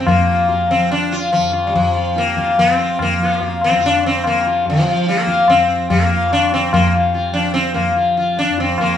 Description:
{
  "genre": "indian classical, Hindustani",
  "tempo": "145 BPM",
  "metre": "7/4",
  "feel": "straight",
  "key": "unclear",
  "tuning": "A4 = 440 Hz",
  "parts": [
    { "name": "sitar", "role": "melody", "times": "0.0-9.0 s", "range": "F3 to F4", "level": "-15 LUFS", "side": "left 2 dB", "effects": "plate reverb" },
    { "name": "tanpura", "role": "drone", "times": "0.0-9.0 s", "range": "F2 to F3", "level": "-23 LUFS", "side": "right 1 dB", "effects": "none" },
    { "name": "tabla", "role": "percussion", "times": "0.1-8.9 s", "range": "none", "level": "-20 LUFS", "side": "left 2 dB", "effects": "none" }
  ],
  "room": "moderate studio reverb, RT60 0.7 s",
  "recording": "studio reverb",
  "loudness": "-13 LUFS",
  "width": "side -9 dB against mid",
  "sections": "0.0-8.8 A section",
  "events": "none",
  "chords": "none"
}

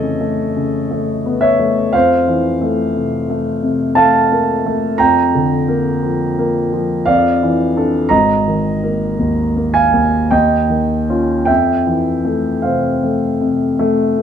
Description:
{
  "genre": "classical, impressionist solo piano",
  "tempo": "51-60 BPM",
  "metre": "3/4",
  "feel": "rubato",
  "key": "F major",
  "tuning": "A4 = 440 Hz",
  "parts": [
    { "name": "warm concert grand piano", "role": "solo", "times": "0.0-14.2 s", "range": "Ab1 to Bb5", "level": "-13 LUFS", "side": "equal", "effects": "none" }
  ],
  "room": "moderate recital hall reverb, RT60 1.5 s",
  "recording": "close, detailed microphones",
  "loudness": "-13 LUFS",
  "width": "side -8 dB against mid",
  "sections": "0.0-14.2 A section",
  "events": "none",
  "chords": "0.0 A/F; 1.9 Fmaj7; 5.0 Gm7/F; 7.1 Dmadd9/F; 8.1 Absus2; 10.3 Eb9; 11.5 Fmaj9"
}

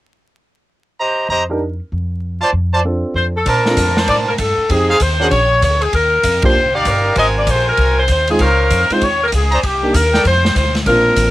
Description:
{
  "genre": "jazz, big band swing",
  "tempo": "194 BPM",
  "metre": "4/4",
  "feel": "swing 63% on 8ths",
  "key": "Bb major",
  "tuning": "A4 = 441 Hz",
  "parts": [
    { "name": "brilliant trumpet section", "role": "stabs", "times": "1.0-10.2 s", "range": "D4 to Bb5", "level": "-17 LUFS", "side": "right 2 dB", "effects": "none" },
    { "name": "upright bass", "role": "bass", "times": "1.3-11.3 s", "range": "G1 to Bb2", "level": "-18 LUFS", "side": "equal", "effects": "none" },
    { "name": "warm grand piano", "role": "accompaniment", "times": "1.5-11.3 s", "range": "Ab3 to Bb4", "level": "-19 LUFS", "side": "right 2 dB", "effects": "none" },
    { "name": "edgy saxophone section", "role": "melody", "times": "3.2-11.3 s", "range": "G4 to Eb5", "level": "-15 LUFS", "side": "left 1 dB", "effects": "none" },
    { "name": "swinging big-band drum kit", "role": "drums", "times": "3.5-11.3 s", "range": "hi-hat, kick drum, ride cymbal, snare drum", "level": "-20 LUFS", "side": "equal", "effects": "none" }
  ],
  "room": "light reverb",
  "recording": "home recording on cassette, vinyl crackle",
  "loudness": "-12 LUFS",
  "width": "side -16 dB against mid",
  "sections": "1.0-3.5 A section; 3.5-11.3 B section",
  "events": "band accent 6.4",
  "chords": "1.0 Cm7; 2.2 Dm7; 3.5 Bbmaj9; 4.7 Fm7; 5.3 Bb(#9); 5.9 Ebmaj9; 7.2 Ab9; 8.4 Dbmaj9; 9.6 Cm9; 10.2 F5"
}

